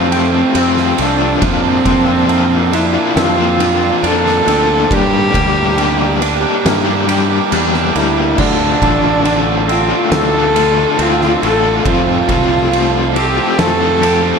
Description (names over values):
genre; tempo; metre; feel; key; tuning
post-rock; 69 BPM; 4/4; straight; F major; A4 = 440 Hz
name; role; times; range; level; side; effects
dark cello; melody; 0.0-14.4 s; C4 to A4; -16 LUFS; equal; slapback echo
shimmering ambient pad; sustained chords; 0.0-14.4 s; Bb3 to C6; -27 LUFS; right 1 dB; none
twangy electric guitar; arpeggios; 0.0-14.4 s; G2 to G4; -22 LUFS; left 4 dB; phaser, slapback echo
distorted electric guitar; riff; 0.0-14.4 s; D3 to G4; -19 LUFS; right 12 dB; distortion
overdriven semi-hollow guitar; riff; 0.0-14.4 s; D3 to G4; -19 LUFS; left 14 dB; tremolo
growling fingered electric bass; bass; 0.0-14.3 s; A1 to G2; -19 LUFS; equal; overdrive
oversized low-tuned drum kit; drums; 0.1-14.2 s; crash cymbal, kick drum, ride cymbal, snare drum; -19 LUFS; right 1 dB; none
room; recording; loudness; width
light reverb, small room ambience; none; -11 LUFS; side -6 dB against mid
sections
0.0-14.4 A section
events
none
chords
0.0 Fadd9; 1.4 Bbadd9/F; 4.9 Gm; 8.4 Dm7; 11.8 Fadd9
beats
0.55 | 1.42 2.29 3.16 4.03 | 4.90 5.77 6.64 7.51 | 8.38 9.25 10.12 10.98 | 11.85 12.72 13.58